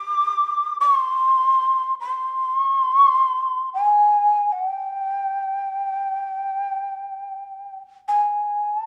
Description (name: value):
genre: japanese traditional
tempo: free time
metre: none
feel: none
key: unclear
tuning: A4 = 440 Hz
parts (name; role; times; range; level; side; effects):
- breathy mellow shakuhachi; solo; 0.0-8.9 s; G5 to D6; -21 LUFS; equal; none
room: moderate scoring stage reverb, RT60 1.6 s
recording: dark, warm production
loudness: -21 LUFS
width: mono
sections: 0.0-8.9 A section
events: none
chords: none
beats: free time